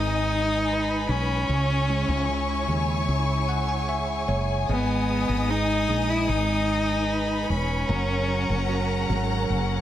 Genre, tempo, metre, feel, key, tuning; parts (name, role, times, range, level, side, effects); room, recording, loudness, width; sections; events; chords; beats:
pop ballad; 75 BPM; 4/4; straight; G# minor; A4 = 440 Hz
rich cello; melody; 0.0-9.1 s; B3 to E4; -26 LUFS; left 1 dB
dark studio violin section; second line; 0.0-9.8 s; A#4 to D#6; -31 LUFS; left 1 dB
bell-like tine electric piano; accompaniment; 0.0-9.8 s; C#3 to G#5; -30 LUFS; right 5 dB; phaser
warm studio string section; sustained chords; 0.0-9.8 s; C#4 to G#5; -32 LUFS; left 4 dB
woody fretless electric bass; bass; 0.0-9.8 s; E1 to D#2; -27 LUFS; equal
light reverb, small room ambience; -22 LUFS; side -12 dB against mid
0.0-9.8 A section
tine electric piano fill 3.1-4.7
0.0 G#m; 1.5 C#m; 4.7 G#m; 7.9 F#add9
0.69 | 1.50 2.29 3.10 3.90 | 4.70 5.50 6.29 7.09 | 7.89 8.70 9.49